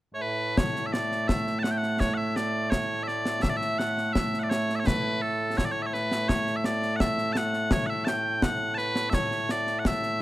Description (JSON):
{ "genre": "scottish traditional, Scottish pipe music", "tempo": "84 BPM", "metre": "2/4", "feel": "straight", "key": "A major", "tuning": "A4 = 440 Hz", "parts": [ { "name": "loud bright bagpipes", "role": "melody", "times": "0.1-10.2 s", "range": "A2 to A5", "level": "-26 LUFS", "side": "equal", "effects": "none" }, { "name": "concert snare drum and concert bass drum", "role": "drums", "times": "0.6-10.1 s", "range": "none", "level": "-29 LUFS", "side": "equal", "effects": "none" } ], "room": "light reverb", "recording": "close, detailed microphones", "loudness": "-24 LUFS", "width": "side -16 dB against mid", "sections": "0.6-10.2 A section", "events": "none", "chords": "none" }